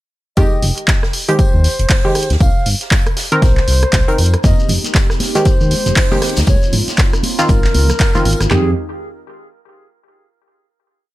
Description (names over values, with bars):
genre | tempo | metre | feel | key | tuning
deep house | 118 BPM | 4/4 | swing 60% on 16ths | F minor | A4 = 440 Hz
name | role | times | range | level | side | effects
mellow hollow silver concert flute | melody | 0.4-8.7 s | Ab4 to F5 | -23 LUFS | left 1 dB | tape echo
filtered dub chord stab | stabs | 0.4-8.7 s | Eb3 to Bb4 | -19 LUFS | right 1 dB | chorus, sidechain pumping, tape echo
smooth gliding synth bass | bass | 0.4-8.7 s | F1 to F2 | -14 LUFS | equal | none
punchy analog drum machine | drums | 0.4-8.6 s | handclaps, kick drum, snare drum, toms | -14 LUFS | equal | none
punchy analog drum machine | drums | 0.4-8.5 s | handclaps, hi-hat, rim click | -20 LUFS | right 1 dB | none
unplugged drum kit | drums | 0.4-8.4 s | hi-hat, snare drum, tambourine | -28 LUFS | left 1 dB | sidechain pumping on hats, high-pass filter on hats, high-pass filter on snare, sidechain pumping on perc, high-pass filter on perc, high-pass filter on room
hollow soft pad | sustained chords | 4.4-8.7 s | Ab3 to G4 | -25 LUFS | right 1 dB | chorus, sidechain pumping
congas | percussion | 4.4-8.2 s | none | -25 LUFS | right 3 dB | none
shekere | percussion | 4.4-8.5 s | none | -27 LUFS | left 3 dB | none
room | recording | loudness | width
studio ambience | none | -12 LUFS | side -17 dB against mid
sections
0.4-8.5 drop; 8.5-10.5 final chord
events
drop 0.4-8.5; band accent 8.0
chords
0.4 Fm9; 2.4 Cm7; 4.4 Fm9; 6.5 Dbmaj13; 8.5 Fm9